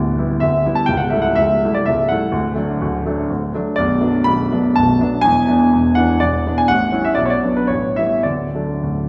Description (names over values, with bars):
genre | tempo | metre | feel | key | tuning
classical, romantic triple-time dance for piano with dotted rhythms | 97-137 BPM | 3/4 | rubato | D major | A4 = 438 Hz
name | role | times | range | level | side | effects
clear grand piano | solo | 0.0-9.1 s | B0 to B5 | -17 LUFS | equal | none
room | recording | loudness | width
wet recital hall reverb, RT60 1.5 s | heard from further back in the room | -17 LUFS | mono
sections
0.0-9.1 A section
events
none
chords
0.0 Em7/D; 0.9 A7/C#; 2.3 D; 3.8 Bm; 5.2 E7; 6.7 A7; 7.2 Bm; 7.7 A9; 8.2 D